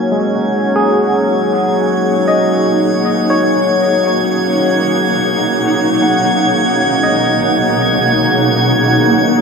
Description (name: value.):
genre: ambient.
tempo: free time.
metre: none.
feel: none.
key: unclear.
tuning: A4 = 440 Hz.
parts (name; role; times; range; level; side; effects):
granular cloud pad; sustained chords; 0.0-9.4 s; B2 to F#5; -15 LUFS; right 1 dB; built-in reverb.
barky tine electric piano; arpeggios; 0.0-9.4 s; F#3 to F#5; -18 LUFS; left 1 dB; overdrive, lush chorus, dub echo.
analog drone; drone; 0.0-9.4 s; F#3 to C#4; -17 LUFS; left 1 dB; chorus.
drifting glass-harmonics texture; texture; 0.0-9.4 s; G#6; -19 LUFS; right 1 dB; chorus, built-in reverb.
room: wet plate reverb, RT60 2.9 s.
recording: echo-heavy mix.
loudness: -11 LUFS.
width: side -5 dB against mid.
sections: 0.0-9.4 A section.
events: fade-in on ambient pad 0.0-9.4; fade-in on synth texture 0.0-9.4; fade-out on tine electric piano 0.0-9.4.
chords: 0.0 F#add9; 4.1 Bmaj7.